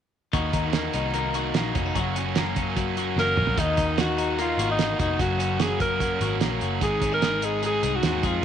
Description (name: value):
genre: jangly indie pop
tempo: 148 BPM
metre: 4/4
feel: straight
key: Eb dorian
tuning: A4 = 439 Hz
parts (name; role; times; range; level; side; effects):
- overdriven electric guitar; accompaniment; 0.3-8.4 s; Gb2 to Ab4; -30 LUFS; right 10 dB; none
- twelve-string electric guitar; arpeggios; 0.3-8.4 s; Gb2 to Ab4; -29 LUFS; left 10 dB; slapback echo
- vintage muted picked electric bass; bass; 0.3-8.4 s; F1 to F2; -30 LUFS; left 1 dB; none
- cloth-damped thuddy drum kit; drums; 0.3-8.3 s; hi-hat, kick drum, snare drum, toms; -28 LUFS; right 4 dB; none
- bright alto saxophone; melody; 3.2-8.4 s; Eb4 to Bb4; -26 LUFS; left 1 dB; slapback echo
room: small room ambience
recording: 1960s-style stereo with parts hard left and right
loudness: -22 LUFS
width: side -9 dB against mid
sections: 0.3-3.6 A section; 3.6-8.4 B section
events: drum fill 3.2-3.6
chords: 0.3 Ebm; 2.0 Gb; 3.6 Ebm; 5.2 Gb; 6.8 Ab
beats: | 0.34 0.74 1.15 1.55 | 1.96 2.36 2.77 3.17 | 3.58 3.98 4.39 4.79 | 5.20 5.60 6.01 6.41 | 6.82 7.22 7.63 8.03 | 8.44